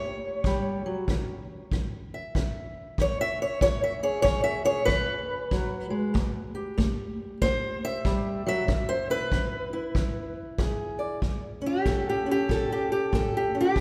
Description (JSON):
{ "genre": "acoustic country blues, solo or duo", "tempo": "95 BPM", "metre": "4/4", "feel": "swing 63% on 8ths", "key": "A mixolydian", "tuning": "A4 = 441 Hz", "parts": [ { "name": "fingerpicked steel-string acoustic guitar", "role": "melody", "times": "0.0-13.8 s", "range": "A2 to E5", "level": "-29 LUFS", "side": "equal", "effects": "none" }, { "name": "kick drum", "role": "drums", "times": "0.4-13.8 s", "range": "none", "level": "-32 LUFS", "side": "equal", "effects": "none" } ], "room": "wet church reverb, RT60 2.6 s", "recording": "recorded in a church or concert hall", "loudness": "-28 LUFS", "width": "mono", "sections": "0.0-11.2 A section; 11.2-13.8 B section", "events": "steel-string acoustic guitar solo 0.0-11.2", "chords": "0.0 A7; 1.1 E; 6.2 A5; 8.7 E; 11.2 A7" }